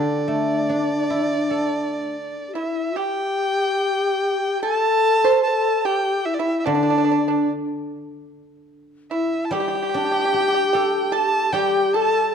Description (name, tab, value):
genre	chinese traditional, Chinese chamber ensemble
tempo	73 BPM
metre	4/4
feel	rubato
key	D shang mode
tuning	A4 = 440 Hz
part	rich erhu	melody	0.0-12.3 s	D5 to A5	-23 LUFS	right 2 dB	none
part	low xiao	second line	0.0-12.3 s	D4 to C5	-22 LUFS	left 4 dB	none
part	pipa	second line	0.0-12.3 s	D4 to C5	-25 LUFS	right 6 dB	none
part	guzheng	accompaniment	0.0-12.3 s	D3 to A4	-26 LUFS	right 2 dB	none
room	moderate concert hall reverb, RT60 1.7 s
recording	dark, warm production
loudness	-18 LUFS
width	side -7 dB against mid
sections	0.0-3.4 A section; 3.4-12.3 B section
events	none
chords	none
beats	| 0.07 0.89 1.72 2.55 | 3.39 4.21 5.04 5.86 | 6.67 7.49 8.30 9.12 | 9.93 10.73 11.54